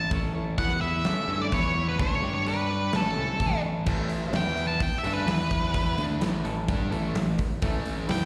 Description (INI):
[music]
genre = quiet-loud alternative rock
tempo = 128 BPM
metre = 4/4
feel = straight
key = A major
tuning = A4 = 439 Hz
[part]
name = octave-fuzz lead guitar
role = melody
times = 0.0-8.3 s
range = A4 to A5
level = -32 LUFS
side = equal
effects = distortion, analog delay
[part]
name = semi-hollow electric guitar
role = arpeggios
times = 0.0-7.9 s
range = E3 to D5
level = -37 LUFS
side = equal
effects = none
[part]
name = fuzz picked electric bass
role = bass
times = 0.0-8.3 s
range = A1 to G2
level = -32 LUFS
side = equal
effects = overdrive
[part]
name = big rock drum kit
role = drums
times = 0.1-8.2 s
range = crash cymbal, hi-hat, kick drum, snare drum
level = -32 LUFS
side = equal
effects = none
[part]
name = fuzz guitar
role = riff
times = 3.9-8.3 s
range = A2 to G4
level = -34 LUFS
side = equal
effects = distortion, slapback echo
[sound]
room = light reverb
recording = live gig heard through the venue's PA, recital hall reverb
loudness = -27 LUFS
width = mono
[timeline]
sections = 0.0-3.9 A section; 3.9-8.3 B section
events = half time 0.0-3.9; lead electric guitar solo 3.9-8.3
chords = 0.0 A; 0.6 E5; 1.0 A; 1.5 E5; 2.0 A; 2.2 G5; 2.9 A; 4.3 E5; 4.8 A; 5.3 E5; 6.0 A